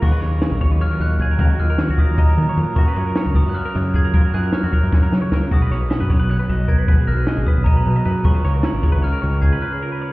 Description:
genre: math rock and midwest emo.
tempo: 306 BPM (eighths).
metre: 7/8.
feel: straight.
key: unclear.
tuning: A4 = 440 Hz.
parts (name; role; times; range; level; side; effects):
glockenspiel with hard plastic mallets; melody; 0.0-10.1 s; A#5 to G#6; -27 LUFS; right 2 dB; none.
twelve-string electric guitar; accompaniment; 0.0-10.1 s; F#2 to B4; -24 LUFS; right 2 dB; spring reverb.
twelve-string electric guitar; arpeggios; 0.0-10.1 s; F#4 to D#5; -31 LUFS; left 3 dB; plate reverb.
growling picked electric bass; bass; 0.0-9.6 s; G#1 to F#3; -19 LUFS; equal; overdrive.
compact cocktail drum kit; drums; 0.0-9.5 s; crash cymbal, kick drum, ride cymbal, snare drum; -19 LUFS; equal; none.
room: light reverb.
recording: heard muffled through a wall, stone room reverb, EQ.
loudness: -15 LUFS.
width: side -20 dB against mid.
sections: 0.0-10.1 A section.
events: drum fill 4.9-5.5; break 9.6-10.1.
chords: 0.0 D#m11; 2.8 F#maj7; 5.5 B6; 8.3 C#7.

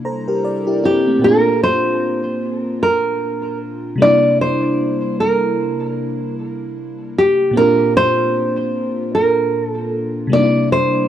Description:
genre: R&B.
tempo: 76 BPM.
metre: 4/4.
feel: swing 58% on 16ths.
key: Bb lydian.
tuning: A4 = 440 Hz.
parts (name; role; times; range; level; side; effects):
FM electric piano with soft pad layer; accompaniment; 0.0-11.1 s; Bb2 to Bb5; -19 LUFS; left 1 dB; chorus.
nylon-string guitar; melody; 0.9-11.1 s; G4 to D5; -16 LUFS; right 1 dB; none.
room: light reverb.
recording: dry, gritty hardware recording.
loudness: -14 LUFS.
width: side -10 dB against mid.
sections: 0.0-1.2 A section; 1.2-11.1 B section.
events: FM electric piano fill 0.0-1.2.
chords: 0.0 C9; 1.2 Bb; 4.0 C9; 7.5 Bb; 10.3 C9.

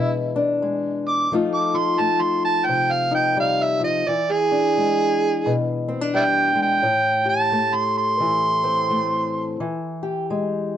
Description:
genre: acoustic country blues, solo or duo.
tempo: 87 BPM.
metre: 4/4.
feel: swing 61% on 8ths.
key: unclear.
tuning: A4 = 439 Hz.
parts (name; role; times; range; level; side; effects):
overdriven harmonica; melody; 0.0-9.6 s; E4 to D6; -20 LUFS; right 3 dB; plate reverb.
fingerpicked old ladder-braced acoustic guitar; accompaniment; 0.0-10.8 s; A2 to A4; -23 LUFS; left 4 dB; none.
room: moderate studio ambience, RT60 0.5 s.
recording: dark, warm production, nothing above 10.4 kHz.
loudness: -18 LUFS.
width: side -10 dB against mid.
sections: 0.0-10.8 A section.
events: harmonica solo 0.0-10.8.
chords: 0.0 E7; 1.3 F7; 4.1 E7#9; 6.8 Am7; 9.6 E(#9).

